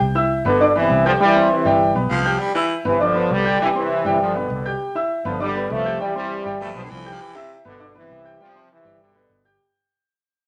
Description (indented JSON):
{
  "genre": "latin",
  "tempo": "200 BPM",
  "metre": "4/4",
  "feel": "straight",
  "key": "C major",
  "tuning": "A4 = 443 Hz",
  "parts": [
    { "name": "fingered electric bass", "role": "bass", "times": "0.0-9.6 s", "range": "G1 to C2", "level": "-29 LUFS", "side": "equal", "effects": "none" },
    { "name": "warm grand piano", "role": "accompaniment", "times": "0.2-9.6 s", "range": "G3 to G6", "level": "-23 LUFS", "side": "equal", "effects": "none" },
    { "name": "brilliant trombone section", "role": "melody", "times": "0.5-9.4 s", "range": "B2 to A3", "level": "-22 LUFS", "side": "equal", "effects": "none" },
    { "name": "raspy baritone saxophone", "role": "second line", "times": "2.1-2.8, 6.6-7.6 s", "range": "B2 to G3", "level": "-27 LUFS", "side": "equal", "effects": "none" }
  ],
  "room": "wet studio reverb, RT60 0.8 s",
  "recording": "none",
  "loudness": "-19 LUFS",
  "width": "mono",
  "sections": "0.0-9.6 A section",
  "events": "fade-out 0.0-9.6",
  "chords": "0.0 C; 0.6 G; 1.2 C; 1.8 G7; 2.4 C; 3.0 G7; 3.6 C; 4.2 G; 4.8 G6; 5.4 G7; 6.0 C; 6.6 G7; 7.2 G6; 7.8 G; 8.4 C; 9.0 G"
}